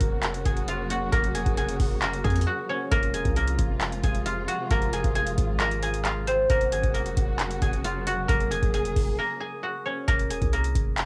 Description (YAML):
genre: hip hop, trap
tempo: 134 BPM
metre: 4/4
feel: half-time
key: F phrygian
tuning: A4 = 440 Hz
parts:
  - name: guzheng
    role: melody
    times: 0.0-11.1 s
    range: Bb3 to Ab5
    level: -30 LUFS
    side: equal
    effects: low-pass filter, cassette tape
  - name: dark symphonic string section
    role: sustained chords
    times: 0.0-10.1 s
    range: C3 to Ab4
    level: -37 LUFS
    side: equal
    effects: cassette tape
  - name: warm 808-style bass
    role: bass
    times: 0.0-11.1 s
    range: Eb1 to F2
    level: -32 LUFS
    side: equal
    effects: none
  - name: booming analog drum machine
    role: drums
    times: 0.0-11.1 s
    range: handclaps, hi-hat, kick drum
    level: -29 LUFS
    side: equal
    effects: cassette tape
room: little or no reverb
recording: home recording on cassette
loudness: -26 LUFS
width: mono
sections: 0.0-10.1 A section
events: break 2.5-2.9, 9.2-10.1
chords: 0.0 Gb/F; 2.9 Fm; 6.5 Gb/F; 10.1 Fm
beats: 0.23 0.68 | 1.13 1.57 2.02 2.47 | 2.92 3.36 3.81 4.26 | 4.71 5.16 5.60 6.05 | 6.50 6.95 7.39 7.84 | 8.29 8.74 9.19 9.63 | 10.08 10.53 10.98